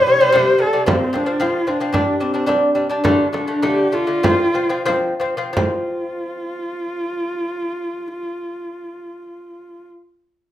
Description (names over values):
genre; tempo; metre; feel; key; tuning
mongolian traditional, Mongolian folk; 86-114 BPM; 4/4; straight; F gong mode; A4 = 436 Hz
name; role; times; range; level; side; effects
dark horsehead fiddle; melody; 0.0-9.9 s; C4 to C5; -20 LUFS; equal; none
lute; arpeggios; 0.1-9.9 s; C3 to D4; -19 LUFS; left 1 dB; none
frame drum; percussion; 0.1-5.9 s; none; -22 LUFS; right 2 dB; none
room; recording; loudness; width
wet studio reverb, RT60 0.6 s; rough home demo mix; -16 LUFS; side -12 dB against mid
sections
0.0-5.6 A section; 5.6-10.5 B section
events
slowing down 0.9-5.6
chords
0.0 C5; 0.9 F5; 1.9 G5; 3.0 D5; 4.2 F5